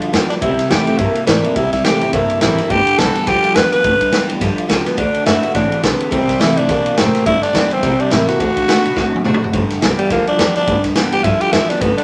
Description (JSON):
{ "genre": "rockabilly", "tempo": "211 BPM", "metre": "4/4", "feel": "swing 59% on 8ths", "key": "G mixolydian", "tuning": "A4 = 440 Hz", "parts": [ { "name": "picked steel-string acoustic guitar", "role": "accompaniment", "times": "0.0-12.0 s", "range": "G2 to G4", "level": "-23 LUFS", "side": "equal", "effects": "none" }, { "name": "electric guitar through a small old amp", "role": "riff", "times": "0.0-12.0 s", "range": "G2 to C4", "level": "-23 LUFS", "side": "equal", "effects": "phaser" }, { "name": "upright bass", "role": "bass", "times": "0.0-12.0 s", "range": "F#1 to D3", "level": "-25 LUFS", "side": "equal", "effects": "none" }, { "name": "vintage drum kit", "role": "drums", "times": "0.0-12.0 s", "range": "kick drum, ride cymbal, snare drum, toms", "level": "-22 LUFS", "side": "equal", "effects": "none" }, { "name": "growling tenor saxophone", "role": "melody", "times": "0.3-12.0 s", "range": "G3 to B4", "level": "-19 LUFS", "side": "equal", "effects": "none" } ], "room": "moderate studio ambience, RT60 0.5 s", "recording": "none", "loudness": "-15 LUFS", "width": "mono", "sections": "0.0-9.5 A section; 9.5-12.0 B section", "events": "drum fill 9.0-9.5; tenor saxophone solo 9.5-12.0", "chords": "0.4 C; 2.7 G; 5.0 D; 6.1 C; 7.3 G; 7.8 C; 8.4 D; 9.5 G" }